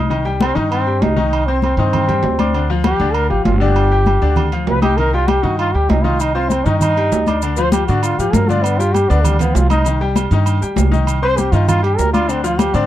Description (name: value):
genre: latin, salsa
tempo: 197 BPM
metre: 4/4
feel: straight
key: C minor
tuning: A4 = 442 Hz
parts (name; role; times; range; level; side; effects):
- bright upright piano; accompaniment; 0.0-12.9 s; D3 to Eb6; -21 LUFS; left 4 dB; none
- upright bass; bass; 0.0-12.9 s; G1 to Ab2; -17 LUFS; right 1 dB; none
- agogo bells and timbales; percussion; 0.1-12.7 s; none; -25 LUFS; right 9 dB; none
- congas; percussion; 0.1-12.9 s; none; -21 LUFS; left 2 dB; none
- bright trombone; melody; 0.4-12.9 s; G3 to C5; -18 LUFS; equal; none
- maracas; percussion; 6.2-12.9 s; none; -31 LUFS; left 19 dB; none
room: little or no reverb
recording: dry, close 1970s-style studio recording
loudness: -13 LUFS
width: side -13 dB against mid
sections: 0.0-12.9 A section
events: trombone solo 0.0-12.9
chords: 0.1 Cm; 2.5 Dm; 3.8 G5; 5.0 Cm; 7.4 Ddim; 8.6 G5; 9.9 Cm; 12.3 Ddim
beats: | 0.10 0.41 0.71 1.01 | 1.32 1.62 1.93 2.23 | 2.54 2.84 3.15 3.45 | 3.76 4.07 4.37 4.67 | 4.98 5.29 5.59 5.90 | 6.20 6.51 6.81 7.12 | 7.42 7.73 8.03 8.34 | 8.64 8.95 9.25 9.55 | 9.86 10.16 10.47 10.77 | 11.07 11.38 11.68 11.98 | 12.29 12.59